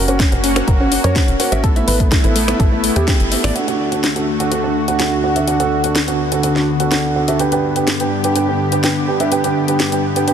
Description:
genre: progressive house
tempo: 125 BPM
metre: 4/4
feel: straight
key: D major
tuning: A4 = 440 Hz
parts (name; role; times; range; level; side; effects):
- lush unison pad; sustained chords; 0.0-10.3 s; D2 to G4; -20 LUFS; left 1 dB; chorus, sidechain pumping
- soft round pluck; arpeggios; 0.0-3.5 s; A3 to C#5; -23 LUFS; equal; lush chorus, cassette tape, sidechain pumping, ping-pong delay
- felt-muted upright piano; stabs; 0.0-10.3 s; B3 to G5; -18 LUFS; right 3 dB; sidechain pumping, low-pass filter, ping-pong delay
- tight sequencer bass; bass; 0.0-3.5 s; E1 to F#2; -20 LUFS; equal; tube saturation, sidechain pumping
- house drum kit; drums; 0.1-10.3 s; finger snaps, hi-hat, snare drum; -21 LUFS; left 2 dB; overdrive
- electronic kick drum; drums; 0.2-3.2 s; none; -15 LUFS; equal; overdrive
room: light reverb, digital ambience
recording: dense, heavily limited modern master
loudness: -14 LUFS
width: side -8 dB against mid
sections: 0.0-3.6 A section; 3.6-10.3 B section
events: band accent 3.1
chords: 0.0 F#; 1.6 Asus2; 3.6 D; 7.4 G

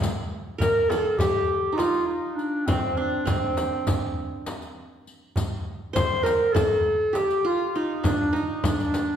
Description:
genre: Turkish makam ensemble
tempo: 202 BPM (eighths)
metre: 9/8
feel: straight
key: G makam ussak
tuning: A4 = 440 Hz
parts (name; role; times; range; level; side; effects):
- darbuka; percussion; 0.0-9.1 s; none; -30 LUFS; right 1 dB; none
- frame drum; percussion; 0.0-9.1 s; none; -30 LUFS; left 2 dB; none
- riq; percussion; 0.0-9.1 s; none; -36 LUFS; left 3 dB; none
- dark clarinet; melody; 0.6-9.2 s; C4 to C5; -24 LUFS; equal; none
- qanun; second line; 0.6-9.2 s; C4 to C5; -28 LUFS; right 3 dB; none
room: wet recital hall reverb, RT60 1.4 s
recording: recorded in a church or concert hall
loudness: -22 LUFS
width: side -9 dB against mid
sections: 0.0-9.2 A section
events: none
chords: none

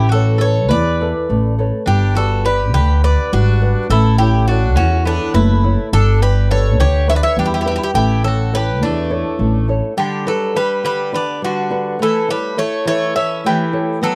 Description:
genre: greek folk, Greek bouzouki band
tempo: 207 BPM (eighths)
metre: 7/8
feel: straight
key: unclear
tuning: A4 = 440 Hz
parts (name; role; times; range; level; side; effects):
- Greek bouzouki; melody; 0.0-14.2 s; D4 to E5; -22 LUFS; equal; none
- Greek bouzouki; second line; 0.0-14.2 s; D3 to C#5; -26 LUFS; equal; none
- flamenco guitar; accompaniment; 0.0-14.2 s; D3 to E5; -24 LUFS; equal; none
- upright bass; bass; 0.0-9.8 s; F#1 to E2; -17 LUFS; equal; none
room: little or no reverb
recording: dry, close 1970s-style studio recording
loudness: -16 LUFS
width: mono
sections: 0.0-10.0 A section; 10.0-14.2 A section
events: none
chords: 0.0 Aadd9; 1.9 G; 3.9 A; 5.9 G; 8.0 A; 10.0 G; 12.0 A

